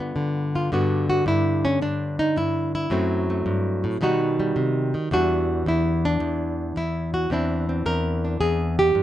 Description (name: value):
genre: solo jazz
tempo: 109 BPM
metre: 4/4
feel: swing 69% on 8ths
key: G major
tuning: A4 = 439 Hz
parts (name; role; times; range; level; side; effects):
- nylon-string guitar; solo; 0.0-9.0 s; E2 to Bb4; -21 LUFS; equal; none
room: light reverb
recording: nothing above 11.0 kHz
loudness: -21 LUFS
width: side -12 dB against mid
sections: 0.7-9.0 A section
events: nylon-string guitar solo 0.7-9.0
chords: 0.0 G7; 0.7 Gmaj7; 2.9 F#m7b5; 4.0 B; 5.1 Em9; 7.3 E7alt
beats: 0.16 | 0.71 1.26 1.81 2.36 | 2.91 3.46 4.01 4.55 | 5.10 5.65 6.20 6.75 | 7.29 7.84 8.39 8.94